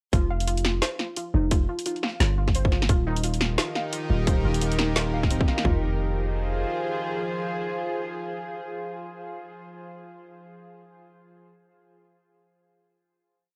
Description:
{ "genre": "half-time drum and bass", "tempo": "174 BPM", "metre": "4/4", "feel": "swing 59% on 16ths, half-time", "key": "F minor", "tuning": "A4 = 440 Hz", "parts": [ { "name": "warbly dusty pluck", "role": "arpeggios", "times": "0.1-5.8 s", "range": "C4 to F5", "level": "-34 LUFS", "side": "equal", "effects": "chorus, analog delay" }, { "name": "long sustained 808-style bass", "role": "bass", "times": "0.1-6.6 s", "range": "Eb1 to G1", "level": "-28 LUFS", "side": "equal", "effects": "none" }, { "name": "drum and bass drum kit", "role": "drums", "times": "0.1-5.6 s", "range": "hi-hat, snare drum", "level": "-30 LUFS", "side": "equal", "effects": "overdrive, studio reverb, cassette tape" }, { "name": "trap drum kit", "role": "drums", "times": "0.1-5.7 s", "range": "kick drum, toms", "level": "-26 LUFS", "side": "equal", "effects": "overdrive, studio reverb, cassette tape" }, { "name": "bowed-like drone", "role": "sustained chords", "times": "3.5-9.2 s", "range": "Eb3 to C5", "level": "-33 LUFS", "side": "equal", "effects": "built-in reverb, sidechain pumping" } ], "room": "light reverb", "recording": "home recording on cassette", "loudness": "-26 LUFS", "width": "mono", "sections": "0.1-5.7 drop; 5.7-8.4 final chord", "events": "drop 0.1-5.7", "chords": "0.1 F5; 2.9 Eb; 5.7 Fm" }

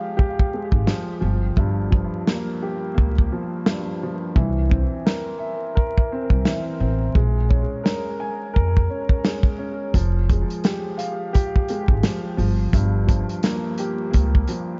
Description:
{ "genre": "hip hop, boom-bap hip-hop", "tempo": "86 BPM", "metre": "4/4", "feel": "swing 59% on 16ths", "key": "F harmonic minor", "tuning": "A4 = 441 Hz", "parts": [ { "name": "dark upright piano", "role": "accompaniment", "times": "0.0-14.8 s", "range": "G2 to Ab5", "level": "-28 LUFS", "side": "equal", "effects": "cassette tape, high-pass filter, low-pass filter, dub echo" }, { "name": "warm soul drum kit", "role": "drums", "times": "0.2-14.7 s", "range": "hi-hat, kick drum, snare drum", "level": "-22 LUFS", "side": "equal", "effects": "none" }, { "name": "upright bass", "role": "bass", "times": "0.7-14.4 s", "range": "F1 to F2", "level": "-24 LUFS", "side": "equal", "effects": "none" } ], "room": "studio ambience", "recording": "echo-heavy mix, vinyl crackle, nothing above 7.6 kHz", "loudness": "-22 LUFS", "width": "mono", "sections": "0.0-14.8 A section", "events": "break 0.0-9.9", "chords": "0.0 Fmadd9; 1.2 Gm7; 4.4 C7; 7.2 Bbm7; 9.9 Fmadd9; 12.4 Gm7" }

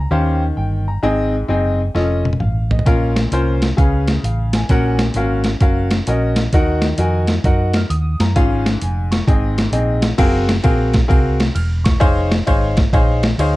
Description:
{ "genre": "uptempo gospel", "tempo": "131 BPM", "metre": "4/4", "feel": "swing 66% on 8ths", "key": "Db major", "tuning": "A4 = 439 Hz", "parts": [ { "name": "bright upright piano", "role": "accompaniment", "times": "0.0-13.6 s", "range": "Ab2 to F6", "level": "-19 LUFS", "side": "left 1 dB", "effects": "none" }, { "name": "hollow-body short-scale fingered electric bass", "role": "bass", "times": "0.0-13.6 s", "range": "Fb1 to Gb2", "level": "-18 LUFS", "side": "equal", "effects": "none" }, { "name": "boom bap sampler-style drum kit", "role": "drums", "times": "2.0-13.5 s", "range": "crash cymbal, hi-hat, kick drum, ride cymbal, snare drum, toms", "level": "-17 LUFS", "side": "equal", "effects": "none" } ], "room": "little or no reverb", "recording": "dark, warm production", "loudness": "-14 LUFS", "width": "side -18 dB against mid", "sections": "0.0-10.2 A section; 10.2-13.6 B section", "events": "drum fill 2.0-2.9", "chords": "0.1 Eb13; 1.0 Ab; 2.0 F7b13; 2.9 Bbm; 3.8 Db7; 4.7 Gb; 6.5 Ebm; 8.4 Db/Ab; 9.3 Ab; 10.2 Gbmaj9#11; 12.0 Dbmaj9/F" }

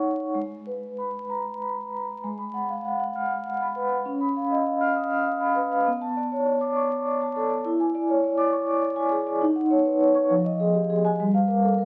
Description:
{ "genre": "classical, contemporary piece for solo vibraphone", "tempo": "67 BPM (dotted quarters)", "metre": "6/8", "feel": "rubato", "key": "G# dorian", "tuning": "A4 = 443 Hz", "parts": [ { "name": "vibraphone with soft mallets", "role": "solo", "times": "0.0-11.8 s", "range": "F3 to E#6", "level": "-25 LUFS", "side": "equal", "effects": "none" } ], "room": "wet stone room reverb, RT60 1.1 s", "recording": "very old 78 rpm record, vinyl crackle", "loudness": "-25 LUFS", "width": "mono", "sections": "0.0-2.3 A section; 2.3-11.8 B section", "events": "none", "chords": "0.4 G#madd9; 2.3 G#m7; 4.1 C#9; 5.9 Bm7; 7.7 E7; 9.4 D#m7; 10.3 Fm7; 11.2 Gm7" }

